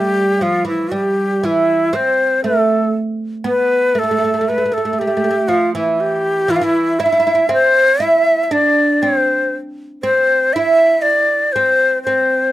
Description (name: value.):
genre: Arabic maqam ensemble.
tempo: 118 BPM (eighths).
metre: 10/8.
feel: straight.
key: C maqam ajam.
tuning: A4 = 440 Hz.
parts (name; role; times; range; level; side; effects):
breathy bright ney; melody; 0.0-12.5 s; E4 to E5; -14 LUFS; left 1 dB; none.
oud; second line; 0.0-12.5 s; E3 to E4; -18 LUFS; right 3 dB; none.
room: moderate studio ambience, RT60 0.5 s.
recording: dry, close 1970s-style studio recording.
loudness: -13 LUFS.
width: side -14 dB against mid.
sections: 0.0-12.5 A section.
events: none.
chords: none.